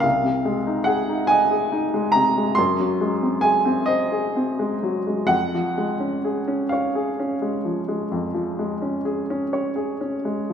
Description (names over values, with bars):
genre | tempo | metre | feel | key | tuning
classical, romantic nocturne for solo piano | 41-50 BPM (dotted quarters) | 12/8 | rubato | unclear | A4 = 439 Hz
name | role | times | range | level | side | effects
warm upright piano | solo | 0.0-10.5 s | C2 to C6 | -20 LUFS | equal | none
room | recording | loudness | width
moderate concert hall reverb, RT60 2.3 s | minimal, uncompressed stereo recording | -20 LUFS | side -8 dB against mid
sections
0.0-10.5 A section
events
none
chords
0.0 Ab/C; 2.6 Ab7/Gb; 5.3 Db/F